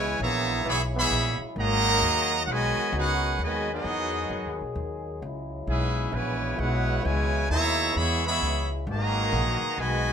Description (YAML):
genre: jazz, big band swing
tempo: 131 BPM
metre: 4/4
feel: swing 67% on 8ths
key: G# minor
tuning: A4 = 440 Hz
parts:
  - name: brilliant trumpet section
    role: melody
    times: 0.0-10.1 s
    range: B3 to B5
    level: -26 LUFS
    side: equal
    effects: none
  - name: bright trombone section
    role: second line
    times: 0.0-10.1 s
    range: B2 to F#4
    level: -31 LUFS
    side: right 3 dB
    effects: none
  - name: muted trombone section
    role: sustained chords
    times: 0.0-10.1 s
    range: B2 to G#4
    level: -35 LUFS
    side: left 2 dB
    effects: none
  - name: upright bass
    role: bass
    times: 0.0-10.1 s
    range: G#1 to F#2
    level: -29 LUFS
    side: left 1 dB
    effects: none
room: light reverb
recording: minimal, uncompressed stereo recording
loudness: -24 LUFS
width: side -7 dB against mid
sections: 0.0-10.1 A section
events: none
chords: 0.0 C#m7; 1.6 G#m7; 5.2 C#m7; 8.9 G#m7